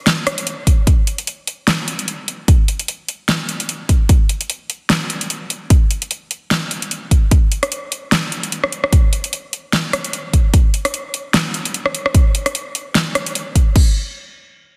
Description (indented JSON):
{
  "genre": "future bass",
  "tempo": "149 BPM",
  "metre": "4/4",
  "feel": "swing 56% on 16ths, half-time",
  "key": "none",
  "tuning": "none",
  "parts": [
    { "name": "pop drum kit", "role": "drums", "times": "0.1-13.8 s", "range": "crash cymbal, hi-hat, rim click, snare drum", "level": "-21 LUFS", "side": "equal", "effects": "small room ambience, soft clipping on snare" },
    { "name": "electronic kick drum", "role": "drums", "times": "0.7-13.8 s", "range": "none", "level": "-14 LUFS", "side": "equal", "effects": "small room ambience" }
  ],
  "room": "light reverb, digital ambience",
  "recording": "dense, heavily limited modern master",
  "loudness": "-18 LUFS",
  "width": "mono",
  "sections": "0.9-13.8 A section; 13.8-14.8 B section",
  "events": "none",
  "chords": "none"
}